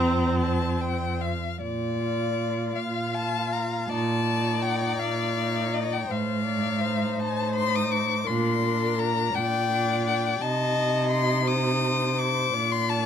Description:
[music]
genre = classical, slow romantic movement for string quartet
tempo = 48-58 BPM (dotted quarters)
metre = 6/8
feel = rubato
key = Bb major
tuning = A4 = 435 Hz
[part]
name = warm violin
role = melody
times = 0.0-13.1 s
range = D5 to Eb6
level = -28 LUFS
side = left 7 dB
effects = none
[part]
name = warm violin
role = second line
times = 0.0-13.1 s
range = Bb4 to F5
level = -30 LUFS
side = left 5 dB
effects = none
[part]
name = rich viola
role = accompaniment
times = 0.0-13.1 s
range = C4 to F4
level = -33 LUFS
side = right 2 dB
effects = none
[part]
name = warm cello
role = bass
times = 0.0-13.1 s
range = F2 to C3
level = -27 LUFS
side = right 3 dB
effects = none
[sound]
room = light reverb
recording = none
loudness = -23 LUFS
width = side -8 dB against mid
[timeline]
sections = 0.0-1.6 A section; 1.6-13.1 B section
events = none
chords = 0.4 F; 1.6 Bb; 3.9 Ebmaj9#11/Bb; 6.1 F7/A; 8.3 Bb; 10.4 Cm6; 12.5 Bb

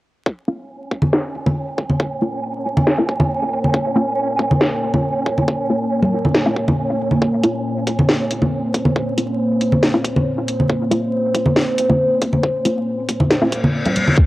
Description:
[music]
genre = deep dubstep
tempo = 138 BPM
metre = 4/4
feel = half-time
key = Bb minor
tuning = A4 = 435 Hz
[part]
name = deep dark ambient pad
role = sustained chords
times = 2.1-14.3 s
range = Bb3 to C5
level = -22 LUFS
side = equal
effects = chorus, built-in reverb, cassette tape
[part]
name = electronic kick drum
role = drums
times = 0.3-14.3 s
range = none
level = -18 LUFS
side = equal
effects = high-pass filter on kick, cassette tape
[part]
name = wind-like tuned noise texture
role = texture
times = 0.8-14.2 s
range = Db4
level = -25 LUFS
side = right 2 dB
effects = built-in reverb, cassette tape
[part]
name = filtered dub chord stab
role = stabs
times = 0.5-13.5 s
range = Bb3 to F4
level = -22 LUFS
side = left 1 dB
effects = phaser, cassette tape, dub echo
[part]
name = congas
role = percussion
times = 1.0-14.2 s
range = none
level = -19 LUFS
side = equal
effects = none
[part]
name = garage drum kit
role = drums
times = 1.1-14.0 s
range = hi-hat, snare drum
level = -18 LUFS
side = equal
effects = low-pass filter on snare, cassette tape, low-pass filter on hats
[part]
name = reverse cymbal and riser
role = sound effects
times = 13.5-14.3 s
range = none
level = -22 LUFS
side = left 2 dB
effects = none
[sound]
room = moderate spring reverb, RT60 1.8 s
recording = home recording on cassette, vinyl crackle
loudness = -16 LUFS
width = side -17 dB against mid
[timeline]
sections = 0.3-14.2 A section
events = filter sweep on drum 0.3-14.2; filter sweep on ambient pad 0.3-14.2; reverse cymbal 13.5-14.2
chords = 0.3 Bbm

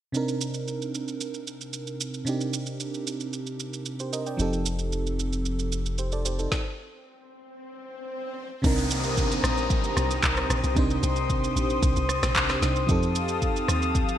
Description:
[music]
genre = amapiano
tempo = 113 BPM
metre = 4/4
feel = straight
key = C dorian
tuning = A4 = 440 Hz
[part]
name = FM electric piano with soft pad layer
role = accompaniment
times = 0.1-14.2 s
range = C3 to G5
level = -29 LUFS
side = right 2 dB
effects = chorus
[part]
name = afro-pop drum kit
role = drums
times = 0.1-14.2 s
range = handclaps, kick drum, rim click, shaker, snare drum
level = -28 LUFS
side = equal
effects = gated reverb
[part]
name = punchy sub bass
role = bass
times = 4.4-6.5 s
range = F1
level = -29 LUFS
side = left 1 dB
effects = none
[part]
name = swell and downlifter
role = sound effects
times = 7.4-12.9 s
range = none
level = -35 LUFS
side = left 1 dB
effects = none
[part]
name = airy breathy pad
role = sustained chords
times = 8.6-14.2 s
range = G4 to Eb6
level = -29 LUFS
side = left 3 dB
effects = chorus
[part]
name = deep log drum bass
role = bass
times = 8.6-14.0 s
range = Bb1 to F2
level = -28 LUFS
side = left 1 dB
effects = none
[sound]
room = light reverb, digital ambience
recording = bright 1980s-style digital production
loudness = -24 LUFS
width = side -11 dB against mid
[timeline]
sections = 0.1-8.6 A section; 8.6-14.2 B section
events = stop 6.5-8.6; swell 7.4-8.6; drop 8.6-14.2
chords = 0.1 Cm7; 4.4 F9; 8.6 Cm7; 12.9 F9

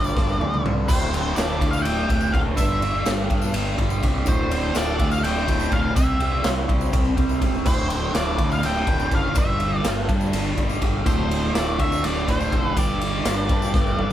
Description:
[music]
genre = psychedelic rock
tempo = 247 BPM (eighths)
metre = 7/8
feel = straight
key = unclear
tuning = A4 = 440 Hz
[part]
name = octave-fuzz lead guitar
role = melody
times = 0.0-14.1 s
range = C5 to G5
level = -27 LUFS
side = equal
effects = distortion
[part]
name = fuzz guitar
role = riff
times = 0.0-14.1 s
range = D2 to C4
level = -25 LUFS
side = right 1 dB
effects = distortion, phaser
[part]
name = fuzz fingered electric bass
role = bass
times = 0.0-14.1 s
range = D1 to G2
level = -26 LUFS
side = equal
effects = overdrive
[part]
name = tambourine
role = percussion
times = 0.0-14.1 s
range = none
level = -41 LUFS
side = left 6 dB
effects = none
[part]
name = raw garage drum kit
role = drums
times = 0.2-14.1 s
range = crash cymbal, kick drum, ride cymbal, snare drum, toms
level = -23 LUFS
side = equal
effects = none
[sound]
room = moderate small room ambience, RT60 0.5 s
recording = band playing live in one room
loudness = -19 LUFS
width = side -12 dB against mid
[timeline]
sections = 0.9-14.1 A section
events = drum fill 0.2-0.9, 13.7-14.1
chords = 0.0 G5; 0.9 D5; 2.6 G5; 4.3 D5; 6.0 C; 7.7 D5; 9.4 G5; 11.1 Dm7; 12.8 G5

